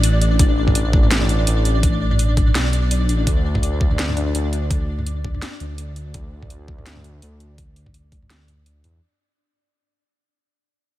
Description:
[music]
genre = half-time drum and bass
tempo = 167 BPM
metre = 4/4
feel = swing 57% on 16ths, half-time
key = unclear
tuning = A4 = 440 Hz
[part]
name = dark detuned saw bass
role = bass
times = 0.0-9.0 s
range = A1 to E2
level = -20 LUFS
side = equal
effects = none
[part]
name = drum and bass drum kit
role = drums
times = 0.0-8.9 s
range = hi-hat, snare drum, toms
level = -25 LUFS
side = right 1 dB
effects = overdrive
[part]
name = pulsing gated texture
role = texture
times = 0.0-9.0 s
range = D4 to D5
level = -26 LUFS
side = left 3 dB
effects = chorus, built-in reverb
[part]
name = electronic kick drum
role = drums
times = 0.4-8.2 s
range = none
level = -18 LUFS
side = equal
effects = overdrive
[sound]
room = little or no reverb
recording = none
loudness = -16 LUFS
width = side -15 dB against mid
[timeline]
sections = 0.0-9.0 A section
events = fade-out 0.0-9.0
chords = 0.0 Asus2; 3.3 N.C.

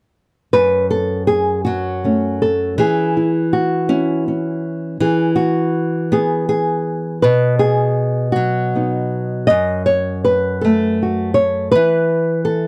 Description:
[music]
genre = folk, solo fingerstyle acoustic guitar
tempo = 54 BPM (dotted quarters)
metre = 6/8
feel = rubato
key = unclear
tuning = A4 = 440 Hz
[part]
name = nylon-string guitar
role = solo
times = 0.5-12.7 s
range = F#2 to D#5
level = -17 LUFS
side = equal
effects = none
[sound]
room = light reverb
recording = dry, close 1970s-style studio recording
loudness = -17 LUFS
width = mono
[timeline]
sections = 0.5-12.7 A section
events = none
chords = 0.5 F#m; 2.8 C#m/E; 5.0 E; 7.2 B; 9.5 F#m; 11.8 E5

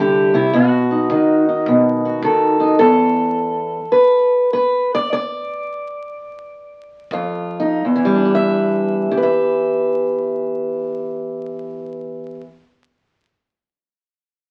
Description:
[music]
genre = acoustic country blues, solo or duo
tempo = 79-106 BPM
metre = 4/4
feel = swing 65% on 8ths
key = E minor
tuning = A4 = 440 Hz
[part]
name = fingerpicked steel-string acoustic guitar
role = melody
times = 0.0-12.5 s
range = E2 to E5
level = -18 LUFS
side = equal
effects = none
[part]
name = kick drum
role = drums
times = 0.5-3.0, 7.1-7.3 s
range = none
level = -40 LUFS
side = equal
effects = none
[sound]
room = moderate studio reverb, RT60 0.8 s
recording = very old 78 rpm record, vinyl crackle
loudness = -17 LUFS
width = mono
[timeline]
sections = 0.0-7.9 A section; 7.9-10.9 B section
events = slowing down 2.8-7.9; stop 2.8-7.1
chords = 0.0 C; 0.5 B7; 2.8 N.C.; 7.1 D#sus2/E#; 7.9 Em7

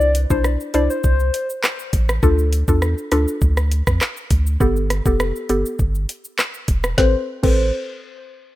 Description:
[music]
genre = dancehall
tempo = 101 BPM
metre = 4/4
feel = straight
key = A minor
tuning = A4 = 440 Hz
[part]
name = soft struck synth lead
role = melody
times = 0.0-1.5, 7.0-7.7 s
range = C5 to D5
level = -22 LUFS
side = left 4 dB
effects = chorus, low-pass filter, ping-pong delay
[part]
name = mallet-like synth pluck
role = accompaniment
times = 0.0-7.7 s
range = B3 to C5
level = -22 LUFS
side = left 1 dB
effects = chorus, low-pass filter
[part]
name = warm sub bass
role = bass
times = 0.0-7.7 s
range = E1 to F2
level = -19 LUFS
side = equal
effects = none
[part]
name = island pop drum kit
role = drums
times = 0.0-7.6 s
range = crash cymbal, handclaps, hi-hat, kick drum, rim click, shaker, snare drum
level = -20 LUFS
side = equal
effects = none
[sound]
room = little or no reverb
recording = rough home demo mix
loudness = -16 LUFS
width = side -16 dB against mid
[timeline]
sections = 0.0-7.0 A section; 7.0-8.6 B section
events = filter sweep 0.0-7.0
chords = 0.0 Cadd9; 2.2 Dm; 4.6 Gadd9; 7.0 Amadd9

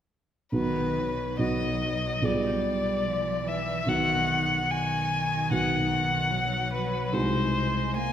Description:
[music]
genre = classical, slow romantic movement for piano trio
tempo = 73 BPM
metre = 4/4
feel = rubato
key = B major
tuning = A4 = 440 Hz
[part]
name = rich violin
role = melody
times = 0.5-8.1 s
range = B4 to G#5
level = -28 LUFS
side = left 3 dB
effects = none
[part]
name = dark cello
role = second line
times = 0.5-8.1 s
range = D#3 to A#3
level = -32 LUFS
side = right 3 dB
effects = none
[part]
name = dark concert grand piano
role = accompaniment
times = 0.5-8.1 s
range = B1 to G#4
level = -29 LUFS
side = right 1 dB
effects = none
[sound]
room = wet concert hall reverb, RT60 1.9 s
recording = recorded in a church or concert hall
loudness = -24 LUFS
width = side -10 dB against mid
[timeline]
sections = 0.5-8.1 A section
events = none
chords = 0.5 B; 2.2 Bdim7; 3.9 B; 7.1 G#7/B#

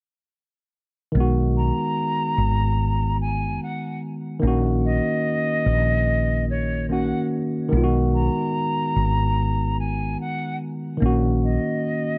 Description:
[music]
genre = hip hop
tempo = 73 BPM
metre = 4/4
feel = swing 62% on 16ths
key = unclear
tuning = A4 = 440 Hz
[part]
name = mellow tine electric piano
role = accompaniment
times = 1.1-12.2 s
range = D#3 to F#4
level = -26 LUFS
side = equal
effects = low-pass filter
[part]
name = woody fretless electric bass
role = bass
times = 1.1-11.6 s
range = G#1 to B1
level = -24 LUFS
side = equal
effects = none
[part]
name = breathy silver concert flute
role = melody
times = 1.6-12.2 s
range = Db5 to Bb5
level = -29 LUFS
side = equal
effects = low-pass filter, plate reverb
[sound]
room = moderate small room reverb, RT60 0.6 s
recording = none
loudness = -23 LUFS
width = mono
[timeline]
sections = 1.1-12.2 A section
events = none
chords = 1.1 B6; 4.4 Ebm7/Bb; 7.7 B6; 11.0 Ebm7/Bb

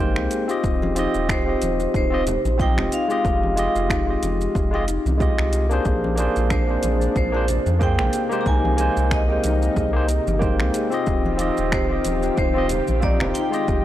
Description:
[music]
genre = sunset chillout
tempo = 92 BPM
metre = 4/4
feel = swing 56% on 16ths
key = Eb major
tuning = A4 = 440 Hz
[part]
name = barky tine electric piano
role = accompaniment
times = 0.0-13.8 s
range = Ab3 to Ab5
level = -24 LUFS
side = moving between left 4 dB and right 3 dB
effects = overdrive, auto-pan, tape echo
[part]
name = kalimba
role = arpeggios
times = 0.0-13.8 s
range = C4 to Ab4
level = -28 LUFS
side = equal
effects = tape echo
[part]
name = round analog bass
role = bass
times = 0.0-13.8 s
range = Eb1 to F2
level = -23 LUFS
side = equal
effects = none
[part]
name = deep house drum kit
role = drums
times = 0.2-13.8 s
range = finger snaps, hi-hat, shaker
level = -31 LUFS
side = equal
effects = overdrive
[part]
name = electronic kick drum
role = drums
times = 0.6-13.8 s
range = none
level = -24 LUFS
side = equal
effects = overdrive
[part]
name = congas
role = percussion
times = 0.8-13.3 s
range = none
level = -32 LUFS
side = left 2 dB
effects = none
[part]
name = vibraphone with medium hard mallets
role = melody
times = 1.3-13.8 s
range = C5 to Bb5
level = -27 LUFS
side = right 1 dB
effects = tape echo
[part]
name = lush unison pad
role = sustained chords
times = 5.9-13.8 s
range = C3 to G4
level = -32 LUFS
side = equal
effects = chorus
[sound]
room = light reverb, digital ambience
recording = dry, gritty hardware recording, transformer saturation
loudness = -18 LUFS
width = side -13 dB against mid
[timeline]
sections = 0.0-13.8 A section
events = none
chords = 0.0 Abmaj9; 0.6 Eb69; 3.2 Fm9; 5.9 Bb9; 8.1 Abmaj9/C; 11.1 Eb69

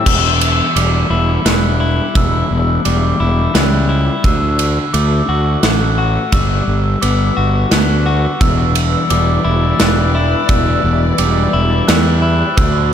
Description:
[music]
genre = post-rock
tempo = 86 BPM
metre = 3/4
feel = straight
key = E minor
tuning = A4 = 440 Hz
[part]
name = warm chamber string section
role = sustained chords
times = 0.0, 8.4-12.9 s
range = G3 to D5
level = -24 LUFS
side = left 2 dB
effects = none
[part]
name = clean electric guitar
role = arpeggios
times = 0.0-12.9 s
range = E2 to F#4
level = -19 LUFS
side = left 4 dB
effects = slapback echo, tape echo
[part]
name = glockenspiel with rubber mallets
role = arpeggios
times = 0.0-12.9 s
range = D6 to F#6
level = -20 LUFS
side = right 1 dB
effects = slapback echo, tape echo
[part]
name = fuzz fingered electric bass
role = bass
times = 0.0-12.9 s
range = E1 to E2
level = -15 LUFS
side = equal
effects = overdrive
[part]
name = big rock drum kit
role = drums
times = 0.1-12.7 s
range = crash cymbal, kick drum, ride cymbal, snare drum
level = -18 LUFS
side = right 1 dB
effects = none
[sound]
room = moderate lush hall reverb, RT60 3.0 s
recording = big arena sound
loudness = -12 LUFS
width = side -9 dB against mid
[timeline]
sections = 0.1-12.9 A section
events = none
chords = 0.1 Em7; 4.2 D; 6.3 Gmaj7; 8.4 Em7

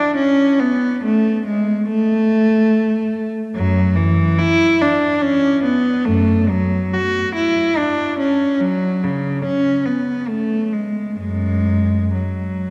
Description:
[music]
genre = classical, baroque-style suite movement for unaccompanied cello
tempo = 71 BPM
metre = 3/4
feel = rubato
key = A major, F# minor from 3.5 s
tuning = A4 = 441 Hz
[part]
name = rich cello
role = solo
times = 0.0-12.7 s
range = F#2 to F#4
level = -18 LUFS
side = equal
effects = none
[sound]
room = wet church reverb, RT60 3.8 s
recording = dark, warm production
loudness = -18 LUFS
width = mono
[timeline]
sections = 0.0-12.7 A section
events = none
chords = none

